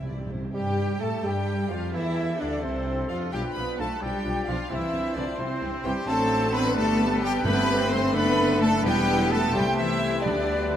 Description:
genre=quick classical-period movement for symphony orchestra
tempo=86 BPM (dotted quarters)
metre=6/8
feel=straight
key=C major, G major from 6.1 s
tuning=A4 = 444 Hz
part: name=rich chamber violin section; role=melody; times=0.0-10.8 s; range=C5 to C6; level=-33 LUFS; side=equal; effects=none
part: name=mellow clarinet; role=second line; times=0.0-10.8 s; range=B3 to A4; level=-35 LUFS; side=right 2 dB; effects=none
part: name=rich chamber viola section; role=accompaniment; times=0.0-10.8 s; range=E3 to A4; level=-34 LUFS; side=left 3 dB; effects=none
part: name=rich chamber double bass section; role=bass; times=0.0-10.8 s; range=E1 to A2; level=-32 LUFS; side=right 1 dB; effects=none
part: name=warm chamber cello section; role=bass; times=0.0-10.8 s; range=C3 to C4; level=-30 LUFS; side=equal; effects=none
part: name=timpani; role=percussion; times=0.0-0.5, 7.4-8.1, 10.3-10.8 s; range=G2 to D3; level=-34 LUFS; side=right 2 dB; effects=none
part: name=concert flute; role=second line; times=0.5-10.8 s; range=C5 to C6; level=-33 LUFS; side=left 2 dB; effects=none
part: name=rich symphonic violin section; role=second line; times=0.5-10.8 s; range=C4 to C5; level=-34 LUFS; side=left 1 dB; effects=none
part: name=warm bassoon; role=accompaniment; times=0.5-10.8 s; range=C3 to B3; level=-36 LUFS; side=right 3 dB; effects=none
part: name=mellow French horn section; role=sustained chords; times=0.5-10.8 s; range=C3 to G4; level=-32 LUFS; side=equal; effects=none
part: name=bright trumpet section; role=stabs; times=0.5-10.8 s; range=C4 to C5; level=-34 LUFS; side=left 2 dB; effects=none
part: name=warm oboe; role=second line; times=1.2-10.8 s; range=G4 to D5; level=-36 LUFS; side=left 1 dB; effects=none
room=wet cathedral reverb, RT60 5.1 s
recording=in a vast, echoing space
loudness=-22 LUFS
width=side -10 dB against mid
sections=0.5-10.8 A section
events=timpani fill 0.0-0.5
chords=0.0 C; 0.5 Fadd9; 1.9 Dm7; 3.3 G7/B; 4.7 C; 6.1 D7/A; 6.8 G; 7.5 Am7/G; 8.1 D/F#; 8.8 Em; 9.5 Am7/C; 10.3 G/D

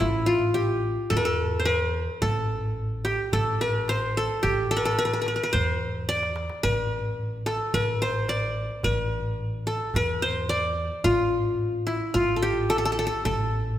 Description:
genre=Arabic maqam ensemble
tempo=109 BPM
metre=4/4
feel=straight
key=A maqam bayati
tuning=A4 = 440 Hz
part: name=qanun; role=melody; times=0.0-13.8 s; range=E4 to D5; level=-25 LUFS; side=left 1 dB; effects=none
part: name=upright bass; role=bass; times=0.0-13.8 s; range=A1 to E2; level=-30 LUFS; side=equal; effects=none
part: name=darbuka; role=percussion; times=0.0-13.7 s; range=none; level=-32 LUFS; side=right 1 dB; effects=none
room=wet concert hall reverb, RT60 1.9 s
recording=recorded in a church or concert hall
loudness=-23 LUFS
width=side -12 dB against mid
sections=0.0-13.8 A section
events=drum fill 6.1-6.6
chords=none

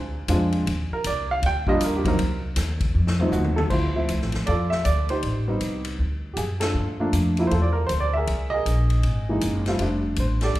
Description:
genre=jazz piano trio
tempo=158 BPM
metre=4/4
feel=swing 64% on 8ths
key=D minor from 3.7 s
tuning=A4 = 440 Hz
part: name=upright bass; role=bass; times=0.0-10.6 s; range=F1 to G2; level=-24 LUFS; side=equal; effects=none
part: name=dark baby grand piano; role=melody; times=0.3-10.6 s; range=E3 to G5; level=-24 LUFS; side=right 1 dB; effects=none
part: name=swinging big-band drum kit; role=drums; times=0.3-10.6 s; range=crash cymbal, hi-hat, kick drum, ride cymbal, snare drum, toms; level=-30 LUFS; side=left 1 dB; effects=none
room=moderate recital hall reverb, RT60 1.4 s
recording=recorded in a church or concert hall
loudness=-21 LUFS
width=side -16 dB against mid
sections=0.0-3.7 A section; 3.7-10.6 B section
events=grand piano solo 0.0-3.7; drum fill 2.9-3.7; band accent 6.6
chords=0.0 Bb7 (rootless); 0.7 Ebmaj7; 2.2 Cm7; 2.9 F7; 3.7 Dm9; 5.2 Am7b5; 6.0 D; 6.8 Gm9; 8.3 C7alt; 9.8 F69

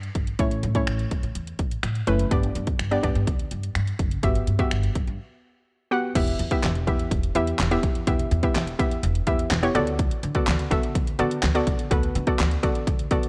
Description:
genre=dance-pop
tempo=125 BPM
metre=4/4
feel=straight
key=unclear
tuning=A4 = 440 Hz
part: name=upright bass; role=bass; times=0.0-13.3 s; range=E1 to D3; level=-29 LUFS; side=equal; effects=sidechain pumping
part: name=pop drum kit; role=drums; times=0.0-13.3 s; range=crash cymbal, finger snaps, handclaps, hi-hat, kick drum, snare drum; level=-28 LUFS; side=equal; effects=none
part: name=hollow square pluck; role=accompaniment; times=0.4-13.3 s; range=A3 to F#5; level=-28 LUFS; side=equal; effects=chorus, sidechain pumping
room=digital ambience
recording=worn, warbling old tape, cassette tape, warbly pitch drift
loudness=-24 LUFS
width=mono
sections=0.0-6.2 A section; 6.2-13.3 B section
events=break 5.2-6.2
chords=0.4 A; 2.3 G; 4.2 Emadd9/G; 6.2 Em; 9.8 Bm7/D

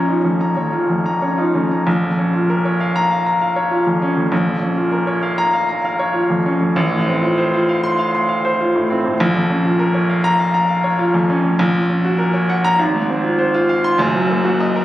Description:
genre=classical, virtuoso piano study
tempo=99 BPM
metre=4/4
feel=rubato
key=Bb minor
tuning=A4 = 438 Hz
part: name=clear baby grand piano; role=solo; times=0.0-14.8 s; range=Gb1 to C6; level=-14 LUFS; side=equal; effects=none
room=wet scoring stage reverb, RT60 1.8 s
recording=recorded on a phone in the room, club reverb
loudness=-15 LUFS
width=side -14 dB against mid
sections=0.0-1.9 A section; 1.9-14.8 B section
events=none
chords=0.0 Bbm; 6.8 F/A; 9.2 Bbm; 11.6 Gb/Bb; 12.8 Fm/Ab; 14.0 Ebm/Gb

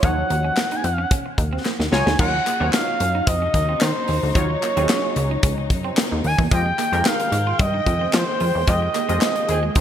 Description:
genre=early-eighties boogie funk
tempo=111 BPM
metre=4/4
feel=straight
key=unclear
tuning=A4 = 440 Hz
part: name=expressive portamento lead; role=melody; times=0.0-9.8 s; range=C5 to Ab5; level=-23 LUFS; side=right 1 dB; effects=chorus
part: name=funky polysynth comp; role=accompaniment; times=0.0-9.6 s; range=F3 to F5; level=-28 LUFS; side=left 1 dB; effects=chorus
part: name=electric guitar at the edge of break-up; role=riff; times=0.0-9.8 s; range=Ab3 to F4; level=-31 LUFS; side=right 7 dB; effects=analog chorus
part: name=plucky analog bass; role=bass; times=0.0-9.8 s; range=Db2 to F3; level=-23 LUFS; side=equal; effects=none
part: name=modern studio drum kit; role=drums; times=0.0-9.8 s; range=crash cymbal, handclaps, hi-hat, kick drum, snare drum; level=-22 LUFS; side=left 1 dB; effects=gated reverb
part: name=group handclap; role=percussion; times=0.6-9.4 s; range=none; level=-34 LUFS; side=left 4 dB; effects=none
part: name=dark studio string section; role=sustained chords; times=2.2-9.8 s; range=Db3 to G5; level=-31 LUFS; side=left 4 dB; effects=none
part: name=dark horn section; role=second line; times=9.5-9.6 s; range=Eb3 to Ab4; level=-26 LUFS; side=right 5 dB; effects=none
room=moderate lush hall reverb, RT60 1.6 s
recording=bright 1980s-style digital production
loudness=-18 LUFS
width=side -9 dB against mid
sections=0.0-2.2 A section; 2.2-9.8 B section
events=drum fill 1.6-2.2; band accent 8.7-9.8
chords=0.0 Ebm9; 6.5 Fm9

